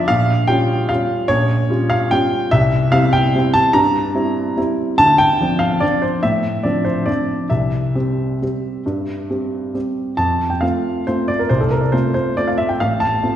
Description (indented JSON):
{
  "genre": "classical, piano waltz",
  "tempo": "128-154 BPM",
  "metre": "3/4",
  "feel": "rubato",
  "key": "F major",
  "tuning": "A4 = 440 Hz",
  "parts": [
    { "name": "warm upright piano", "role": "solo", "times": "0.0-13.4 s", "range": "A1 to Bb5", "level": "-15 LUFS", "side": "equal", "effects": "none" }
  ],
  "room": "wet scoring stage reverb, RT60 1.6 s",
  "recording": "heard from further back in the room",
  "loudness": "-15 LUFS",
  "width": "side -10 dB against mid",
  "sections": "0.0-10.2 A section; 10.2-13.4 B section",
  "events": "none",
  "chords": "0.1 Gm7b5/Bb; 2.5 C7; 5.0 Dm7; 7.5 C; 10.2 F; 12.8 F/A",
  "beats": "| 0.08 0.48 0.89 | 1.29 1.70 2.12 | 2.52 2.93 3.34 | 3.75 4.15 4.57 | 4.99 5.40 5.82 | 6.24 6.65 7.08 | 7.51 7.96 8.42 | 8.87 9.30 9.75 | 10.19 10.63 11.08 | 11.51 11.93 12.37 | 12.80 13.24"
}